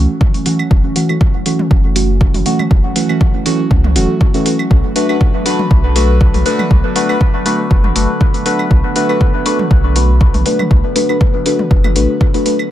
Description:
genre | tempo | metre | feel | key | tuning
dub techno | 120 BPM | 4/4 | swing 54% on 16ths | unclear | A4 = 440 Hz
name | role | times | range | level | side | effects
warbly tape-like pad | sustained chords | 0.0-12.7 s | D3 to C#4 | -22 LUFS | equal | chorus, built-in reverb, sidechain pumping
deep mellow chord stab | stabs | 0.0-12.5 s | E3 to B4 | -16 LUFS | equal | chorus, phaser, sidechain pumping, dub echo
pure sine sub bass | bass | 0.0-12.1 s | E1 to C#2 | -14 LUFS | equal | sidechain pumping
electronic kick drum | drums | 0.2-12.3 s | none | -12 LUFS | equal | overdrive
electronic hi-hat | drums | 0.3-12.6 s | none | -21 LUFS | equal | none
electronic claves and toms | percussion | 0.6-12.7 s | none | -25 LUFS | equal | overdrive, sidechain pumping on perc, sidechain pumping on toms, dub echo
room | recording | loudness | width
light reverb, digital ambience | none | -10 LUFS | side -12 dB against mid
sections
0.0-12.7 A section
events
none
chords
0.0 F#m7; 4.7 Bm7

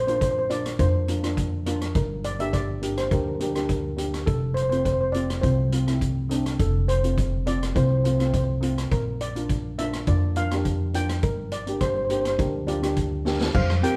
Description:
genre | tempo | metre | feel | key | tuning
calypso | 104 BPM | 4/4 | straight | unclear | A4 = 440 Hz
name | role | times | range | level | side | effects
steel pan | melody | 0.0-14.0 s | F4 to G5 | -30 LUFS | equal | none
upright bass | bass | 0.0-13.8 s | F1 to F2 | -29 LUFS | equal | none
steel pan | accompaniment | 0.1-13.9 s | A3 to G4 | -31 LUFS | equal | none
street-band drum kit | drums | 0.1-14.0 s | crash cymbal, hi-hat, kick drum, rim click, snare drum | -31 LUFS | equal | none
congas | percussion | 13.6-13.7 s | none | -35 LUFS | equal | none
room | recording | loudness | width
moderate stone room reverb, RT60 1.0 s | band playing live in one room | -24 LUFS | mono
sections
0.0-13.5 A section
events
drum fill 13.3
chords
0.0 Bbadd9; 2.0 Gm; 4.3 F; 8.9 Bb; 11.2 Gm

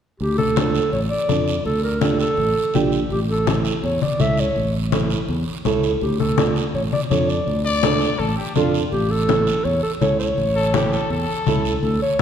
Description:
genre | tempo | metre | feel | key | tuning
latin, cumbia | 165 BPM | 4/4 | straight | D harmonic minor | A4 = 439 Hz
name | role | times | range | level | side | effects
dark clarinet | melody | 0.2-12.2 s | G4 to E5 | -22 LUFS | equal | none
fingered electric bass | bass | 0.2-12.0 s | A1 to F2 | -23 LUFS | equal | none
congas | percussion | 0.2-12.2 s | none | -24 LUFS | left 5 dB | none
guiro | percussion | 0.2-12.2 s | none | -34 LUFS | right 6 dB | none
nylon-string guitar | accompaniment | 0.6-12.2 s | C#4 to A4 | -25 LUFS | right 5 dB | none
growling trumpet | second line | 7.7-11.8 s | F4 to D5 | -25 LUFS | left 5 dB | none
room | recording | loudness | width
wet concert hall reverb, RT60 1.7 s | recorded in a church or concert hall | -17 LUFS | side -8 dB against mid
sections
0.2-11.8 A section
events
none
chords
0.2 Dm; 3.1 A; 6.0 Dm; 8.9 A

